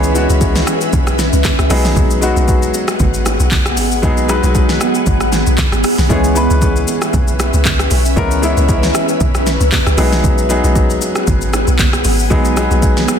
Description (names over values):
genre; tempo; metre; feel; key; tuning
amapiano; 116 BPM; 4/4; swing 55% on 16ths; C# minor; A4 = 440 Hz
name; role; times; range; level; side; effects
warm concert grand piano; accompaniment; 0.0-13.2 s; E3 to B4; -18 LUFS; left 2 dB; none
ethereal airy pad; sustained chords; 0.0-13.2 s; B3 to G#5; -19 LUFS; right 1 dB; ensemble chorus, built-in reverb, phaser, sidechain pumping
deep log drum bass; bass; 0.0-13.1 s; G#1 to C#2; -16 LUFS; equal; none
smooth R&B drum kit; drums; 0.0-13.2 s; handclaps, hi-hat, kick drum, rim click, shaker, snare drum; -16 LUFS; equal; none
bongos and congas; percussion; 0.3-13.2 s; none; -26 LUFS; right 7 dB; none
room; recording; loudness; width
little or no reverb; dense, heavily limited modern master; -11 LUFS; side -8 dB against mid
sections
0.0-13.2 A section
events
none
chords
0.0 C#m7; 1.7 G#m7; 6.1 C#m7; 10.0 G#m7